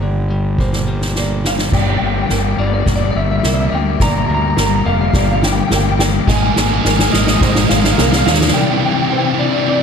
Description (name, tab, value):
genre	post-rock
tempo	106 BPM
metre	4/4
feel	straight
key	G dorian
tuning	A4 = 439 Hz
part	electric guitar at the edge of break-up	melody	0.0-9.8 s	D5 to Bb5	-20 LUFS	equal	analog delay
part	clean electric guitar	arpeggios	0.0-9.8 s	G2 to Eb4	-23 LUFS	left 3 dB	analog delay
part	felt-muted upright piano	arpeggios	0.0-9.8 s	Bb4 to Eb5	-28 LUFS	right 8 dB	analog delay
part	fuzz fingered electric bass	bass	0.0-8.5 s	F1 to Eb2	-18 LUFS	equal	overdrive
part	soft-mallet drum kit	drums	0.6-8.6 s	crash cymbal, kick drum, snare drum, toms	-18 LUFS	right 1 dB	none
part	overdriven semi-hollow guitar	riff	1.7-9.8 s	C3 to Bb3	-20 LUFS	left 15 dB	spring reverb
part	distorted electric guitar	riff	6.3-9.8 s	C3 to Bb3	-20 LUFS	right 13 dB	distortion
room	light reverb, small room reverb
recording	none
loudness	-12 LUFS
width	side -6 dB against mid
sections	0.0-1.7 A section; 1.7-9.8 B section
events	drum fill 0.6-1.7, 1.7-8.6; build-up 1.7-9.8; break 8.6-9.8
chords	0.0 Gm; 6.3 Absus2; 8.6 Cadd9